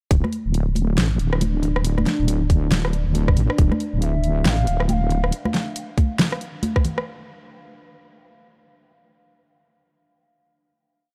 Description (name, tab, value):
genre	deep dubstep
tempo	138 BPM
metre	4/4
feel	swing 60% on 16ths, half-time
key	D minor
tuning	A4 = 443 Hz
part	deep dark ambient pad	sustained chords	1.2-5.4 s	D4	-33 LUFS	equal	chorus, built-in reverb
part	wobble bass	bass	0.1-5.3 s	D1 to A1	-23 LUFS	equal	chorus
part	deep house drum kit	drums	0.1-7.0 s	hi-hat, rim click, snare drum	-26 LUFS	equal	overdrive, studio reverb
part	electronic kick drum	drums	0.1-6.8 s	none	-20 LUFS	equal	studio reverb
part	congas	percussion	0.2-7.0 s	none	-30 LUFS	equal	dub echo
part	breathy mellow low ney	melody	4.0-5.3 s	E5 to G5	-34 LUFS	equal	dub echo
room	digital ambience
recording	dark, warm production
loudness	-21 LUFS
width	mono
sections	0.1-7.1 drop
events	drop 0.1-7.1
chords	none